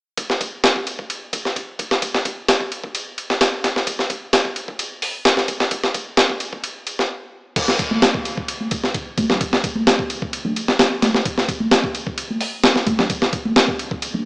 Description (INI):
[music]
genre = breakbeat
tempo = 130 BPM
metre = 4/4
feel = straight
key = none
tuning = none
[part]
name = breakbeat sampler-style drum kit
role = drums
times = 0.2-14.1 s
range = crash cymbal, hi-hat, kick drum, ride cymbal, snare drum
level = -18 LUFS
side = equal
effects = high-pass filter on cymbals, high-pass filter on kick, high-pass filter on snare, high-pass filter on hats
[part]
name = congas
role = percussion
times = 7.9-14.2 s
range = none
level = -24 LUFS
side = equal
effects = none
[sound]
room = light reverb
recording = dry, gritty hardware recording, small speaker sound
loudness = -17 LUFS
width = side -29 dB against mid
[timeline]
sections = 0.2-7.6 A section; 7.6-14.3 B section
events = stop 7.1-7.6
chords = none